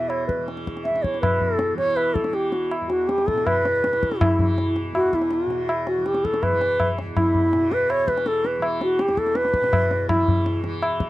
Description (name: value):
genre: indian classical, Hindustani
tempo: 162 BPM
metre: 4/4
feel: straight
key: E raga kafi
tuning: A4 = 440 Hz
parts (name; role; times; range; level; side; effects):
- bansuri; melody; 0.0-10.6 s; E4 to E5; -21 LUFS; equal; none
- tanpura; drone; 0.0-11.1 s; E2 to E3; -30 LUFS; right 2 dB; none
- tabla; percussion; 0.1-11.1 s; none; -24 LUFS; left 1 dB; none
room: light reverb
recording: dry, close 1970s-style studio recording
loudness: -19 LUFS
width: side -16 dB against mid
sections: 0.0-1.2 A section; 1.2-11.1 B section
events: speeding up 0.0-11.1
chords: none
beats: 0.09 0.47 0.84 | 1.22 1.59 1.97 2.34 | 2.72 3.09 3.46 3.83 | 4.21 4.58 4.95 5.32 | 5.69 6.06 6.43 6.79 | 7.16 7.53 7.90 8.27 | 8.63 9.00 9.37 9.73 | 10.10 10.46 10.82